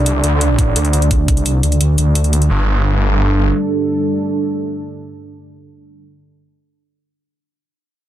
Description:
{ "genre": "dark technical drum and bass", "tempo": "172 BPM", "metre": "4/4", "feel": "straight", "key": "unclear", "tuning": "A4 = 441 Hz", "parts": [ { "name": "dark analog pad", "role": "sustained chords", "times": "0.0-6.1 s", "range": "G3 to D5", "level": "-20 LUFS", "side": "right 2 dB", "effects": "chorus, phaser, sidechain pumping" }, { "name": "snarling distorted saw bass", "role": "bass", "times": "0.0-3.5 s", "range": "G1 to D2", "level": "-13 LUFS", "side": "equal", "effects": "distortion" }, { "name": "electronic hi-hat", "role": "drums", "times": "0.1-2.5 s", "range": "none", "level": "-21 LUFS", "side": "equal", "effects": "none" }, { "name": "electronic kick drum", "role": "drums", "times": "0.6-1.4 s", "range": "none", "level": "-15 LUFS", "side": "equal", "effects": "none" } ], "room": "little or no reverb", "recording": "dense, heavily limited modern master", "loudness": "-13 LUFS", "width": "side -12 dB against mid", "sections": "0.0-2.5 A section; 2.5-5.3 B section", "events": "filter sweep on detuned saw bass 0.0-2.5", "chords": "0.0 D5; 2.5 G5" }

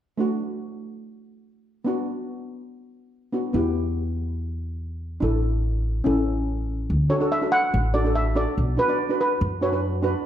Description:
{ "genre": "calypso", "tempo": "143 BPM", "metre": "4/4", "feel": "straight", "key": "D major", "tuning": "A4 = 440 Hz", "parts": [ { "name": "steel pan", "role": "accompaniment", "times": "0.2-10.3 s", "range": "A3 to D5", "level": "-26 LUFS", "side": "equal", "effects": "none" }, { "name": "upright bass", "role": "bass", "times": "3.5-10.1 s", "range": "A1 to F#2", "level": "-25 LUFS", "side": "equal", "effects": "none" }, { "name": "steel pan", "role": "melody", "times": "7.1-10.0 s", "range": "B4 to F#5", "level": "-24 LUFS", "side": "equal", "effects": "none" } ], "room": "moderate recital hall reverb, RT60 1.4 s", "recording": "none", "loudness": "-22 LUFS", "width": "side -10 dB against mid", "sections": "0.2-6.9 A section; 6.9-10.3 B section", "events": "none", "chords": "0.2 D; 1.9 Bm; 3.5 Em; 5.2 Asus4; 6.1 A; 6.9 D; 8.6 Bmadd9" }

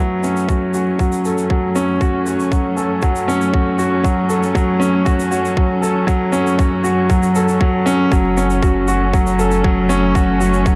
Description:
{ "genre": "piano and strings electronica", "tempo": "118 BPM", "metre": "4/4", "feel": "straight", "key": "F# minor", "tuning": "A4 = 440 Hz", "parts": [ { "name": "dark chamber string section", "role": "sustained chords", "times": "0.0-10.8 s", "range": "F#2 to C#4", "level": "-26 LUFS", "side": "equal", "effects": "sidechain pumping, low-pass filter" }, { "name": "warm grand piano", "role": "riff", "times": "0.0-10.8 s", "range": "F#3 to A4", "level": "-18 LUFS", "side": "equal", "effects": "tape echo" }, { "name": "shaker", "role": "drums", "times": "0.2-10.8 s", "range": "none", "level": "-35 LUFS", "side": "equal", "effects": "high-pass filter on perc, high-pass filter on room" }, { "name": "electronic kick drum", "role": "drums", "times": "0.5-10.8 s", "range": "none", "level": "-19 LUFS", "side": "equal", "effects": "overdrive" }, { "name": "warm sub bass", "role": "bass", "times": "8.1-10.8 s", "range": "F#1", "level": "-23 LUFS", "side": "equal", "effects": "sidechain pumping" } ], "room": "light reverb, studio ambience", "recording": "dark, warm production", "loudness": "-16 LUFS", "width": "mono", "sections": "0.0-8.1 A section; 8.1-10.8 B section", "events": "build-up 0.0-8.1; drop 8.1-10.8", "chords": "0.0 F#m" }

